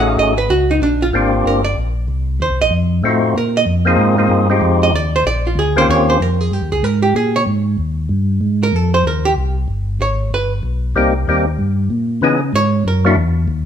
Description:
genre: soul jazz organ trio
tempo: 190 BPM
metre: 4/4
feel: swing 63% on 8ths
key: Bb mixolydian, Eb mixolydian from 5.9 s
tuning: A4 = 440 Hz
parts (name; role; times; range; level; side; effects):
- percussive tonewheel organ; melody; 0.0-6.2, 11.0-13.2 s; Eb3 to G#4; -15 LUFS; left 2 dB; slow rotary speaker, overdrive
- archtop guitar, miked and amplified; accompaniment; 0.0-10.5, 12.6-13.1 s; D4 to F5; -17 LUFS; right 3 dB; none
- mellow tonewheel organ; bass; 0.0-13.7 s; G1 to Db3; -17 LUFS; equal; chorus vibrato, slow rotary speaker
room: moderate large studio reverb, RT60 1.2 s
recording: band playing live in one room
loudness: -13 LUFS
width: side -8 dB against mid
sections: 0.0-5.9 A section; 5.9-13.7 A section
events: hollow-body jazz guitar solo 0.0-13.7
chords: 0.0 B13; 0.8 Bb6; 2.1 Cm7; 2.7 F7b9; 3.4 Bb9sus4; 4.6 Fm7; 5.2 Bb69; 5.9 Eb13; 7.2 Absus2; 7.8 Eb; 8.4 Ab; 9.7 G; 11.0 Cm7; 12.2 Dbm7; 12.8 Gbaug7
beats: 0.18 0.50 | 0.82 1.13 1.45 1.77 | 2.08 2.40 2.72 3.03 | 3.35 3.67 3.98 4.30 | 4.62 4.93 5.25 5.57 | 5.88 6.20 6.52 6.83 | 7.15 7.47 7.78 8.10 | 8.42 8.73 9.05 9.37 | 9.68 10.00 10.32 10.63 | 10.95 11.27 11.58 11.90 | 12.22 12.53 12.85 13.17 | 13.48

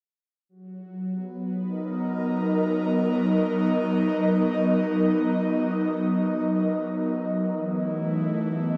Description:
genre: ambient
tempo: 68 BPM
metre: 4/4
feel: straight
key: B major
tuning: A4 = 440 Hz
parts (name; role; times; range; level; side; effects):
- airy breathy pad; solo; 0.5-8.8 s; E3 to D#5; -25 LUFS; equal; chorus, tape echo
room: wet huge ambient reverb, RT60 8.8 s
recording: dreamy mix soaked in reverb, nothing above 10.4 kHz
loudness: -25 LUFS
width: mono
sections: 0.5-8.8 A section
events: none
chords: 0.5 Bmaj7; 7.5 A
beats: | 0.47 1.35 2.23 3.12 | 4.00 4.88 5.76 6.65 | 7.53 8.41

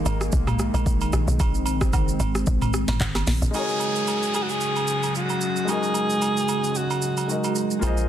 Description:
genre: amapiano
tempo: 112 BPM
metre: 4/4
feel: swing 55% on 16ths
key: unclear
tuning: A4 = 440 Hz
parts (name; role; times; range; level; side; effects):
- warm analog pad; sustained chords; 0.0-8.1 s; C#3 to B#3; -27 LUFS; right 1 dB; chorus
- tight log drum bass; bass; 0.1-3.5 s; G#1 to B1; -24 LUFS; equal; none
- afro-pop drum kit; drums; 0.1-8.1 s; handclaps, hi-hat, kick drum, rim click, shaker, snare drum, toms; -26 LUFS; equal; overdrive
- agogo bells and woodblock; percussion; 0.1-8.0 s; none; -34 LUFS; right 7 dB; none
- clear grand piano; accompaniment; 3.5-8.1 s; G#3 to D#5; -30 LUFS; left 4 dB; none
- downlifter; sound effects; 3.5-7.8 s; none; -32 LUFS; equal; none
- breathy alto saxophone; melody; 3.6-7.6 s; F#4 to G#4; -25 LUFS; equal; tape echo
- round analog bass; bass; 7.8-8.1 s; A#1; -22 LUFS; equal; none
room: little or no reverb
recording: dense, heavily limited modern master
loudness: -21 LUFS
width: side -10 dB against mid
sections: 0.0-3.5 A section; 3.5-8.1 B section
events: drop 0.0-3.5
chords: 0.0 A#9sus4; 3.5 G#9sus4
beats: 0.33 0.86 | 1.40 1.93 2.47 3.00 | 3.54 4.08 4.61 5.15 | 5.68 6.22 6.75 7.29 | 7.83

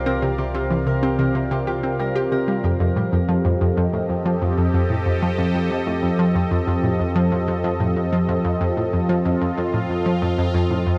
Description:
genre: ambient, sequencer-driven space music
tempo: 93 BPM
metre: 4/4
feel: straight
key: unclear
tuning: A4 = 444 Hz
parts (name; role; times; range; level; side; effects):
- sweeping resonant pad; sustained chords; 0.0-11.0 s; C3 to F5; -25 LUFS; equal; chorus
- Celtic harp; arpeggios; 0.0-4.5 s; F4 to Bb4; -32 LUFS; equal; delay
- analog drone; bass; 0.0-11.0 s; C2 to F2; -30 LUFS; equal; chorus, phaser
- analog pluck; riff; 0.1-10.9 s; F2 to G4; -24 LUFS; equal; chorus, cassette tape, delay
room: wet huge ambient reverb, RT60 7.7 s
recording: none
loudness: -21 LUFS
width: mono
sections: 0.0-2.6 A section; 2.6-11.0 B section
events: none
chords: 0.0 C7sus4; 2.6 F7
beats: | 0.06 0.71 1.35 2.00 | 2.64 3.29 3.93 4.58 | 5.22 5.87 6.51 7.16 | 7.80 8.45 9.09 9.74 | 10.38

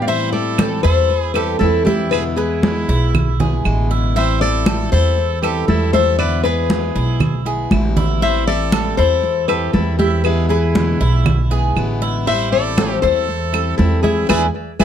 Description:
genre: latin, Cuban son and guajira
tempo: 118 BPM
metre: 4/4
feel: straight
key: A minor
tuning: A4 = 441 Hz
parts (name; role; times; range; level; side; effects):
- nylon-string guitar; melody; 0.0-14.8 s; G4 to F5; -20 LUFS; left 5 dB; tape echo
- brilliant trumpet; second line; 0.0-14.8 s; E4 to D5; -26 LUFS; right 6 dB; none
- picked plugged-in steel-string acoustic guitar; accompaniment; 0.0-14.8 s; B2 to E4; -25 LUFS; left 5 dB; none
- Cuban tres; arpeggios; 0.0-14.8 s; E4 to E5; -24 LUFS; right 7 dB; none
- upright bass; bass; 0.0-14.8 s; A1 to A2; -19 LUFS; right 1 dB; none
- congas; percussion; 0.1-14.8 s; none; -20 LUFS; equal; none
- claves; percussion; 0.6-14.8 s; none; -25 LUFS; right 10 dB; none
room: light reverb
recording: dark, warm production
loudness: -14 LUFS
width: side -9 dB against mid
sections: 0.1-14.8 A section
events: drum fill 7.7-8.2; band accent 14.3-14.8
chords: 0.1 Am7; 2.1 E7; 4.2 Am7; 6.2 E7; 8.2 Am7; 10.2 E7; 12.3 Am7; 14.3 E7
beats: | 0.08 0.59 1.10 1.61 | 2.12 2.63 3.14 3.65 | 4.16 4.67 5.18 5.68 | 6.19 6.70 7.21 7.72 | 8.22 8.73 9.24 9.74 | 10.25 10.76 11.26 11.77 | 12.27 12.78 13.28 13.79 | 14.29 14.80

